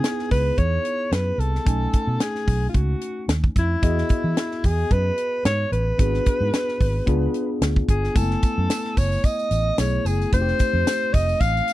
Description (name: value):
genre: polished 1980s jazz-funk pop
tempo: 111 BPM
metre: 4/4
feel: swing 54% on 16ths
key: C# minor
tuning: A4 = 440 Hz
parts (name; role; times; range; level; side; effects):
- warm alto saxophone; melody; 0.0-11.7 s; E4 to F5; -25 LUFS; equal; slapback echo
- tine electric piano; accompaniment; 0.0-11.7 s; G#3 to G#5; -28 LUFS; left 2 dB; wide subtle chorus
- tight funk drum kit; drums; 0.0-11.7 s; hi-hat, kick drum, snare drum; -21 LUFS; equal; none
- vintage muted fingered electric bass; bass; 0.3-11.6 s; F1 to E3; -23 LUFS; equal; none
- tambourine; percussion; 8.2-11.7 s; none; -40 LUFS; right 15 dB; none
room: little or no reverb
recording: dry, close 1970s-style studio recording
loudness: -19 LUFS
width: side -15 dB against mid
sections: 0.0-11.7 A section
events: none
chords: 0.0 C#m9; 1.7 B13; 3.8 Emaj9; 6.0 G#m7b5; 7.1 C#7b9; 8.2 F#m11; 10.3 F7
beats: 0.04 0.58 1.12 | 1.66 2.21 2.75 3.29 | 3.83 4.37 4.91 5.45 | 5.99 6.53 7.08 7.62 | 8.16 8.70 9.24 9.78 | 10.32 10.87 11.41